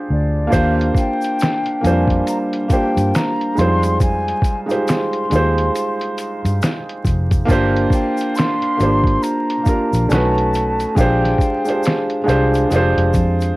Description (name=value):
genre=lo-fi hip hop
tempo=69 BPM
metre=4/4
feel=swing 60% on 16ths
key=F dorian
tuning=A4 = 440 Hz
part: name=felt-muted upright piano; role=accompaniment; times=0.0-13.6 s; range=G3 to C5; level=-18 LUFS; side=right 1 dB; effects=low-pass filter, cassette tape
part: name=breathy mellow concert flute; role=melody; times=0.1-11.8 s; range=D5 to C6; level=-23 LUFS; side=left 1 dB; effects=low-pass filter, cassette tape
part: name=vintage muted fingered electric bass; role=bass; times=0.1-13.5 s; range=F1 to G2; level=-18 LUFS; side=equal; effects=none
part: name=lo-fi sampler-style drum kit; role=drums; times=0.5-13.6 s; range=finger snaps, hi-hat, kick drum, snare drum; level=-19 LUFS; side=equal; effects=cassette tape
part: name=tube shaker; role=percussion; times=0.5-13.6 s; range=none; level=-40 LUFS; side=left 6 dB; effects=none
room=light reverb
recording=home recording on cassette, vinyl crackle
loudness=-15 LUFS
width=side -20 dB against mid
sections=0.0-13.6 A section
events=none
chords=0.0 Bb13 (rootless); 0.5 Ebmaj13; 3.6 Fm9; 7.5 Bb13/G; 10.1 B9; 11.0 Bb13; 12.7 Fm69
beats=| 0.53 1.40 2.27 3.14 | 4.01 4.88 5.75 6.62 | 7.49 8.36 9.22 10.10 | 10.96 11.83 12.70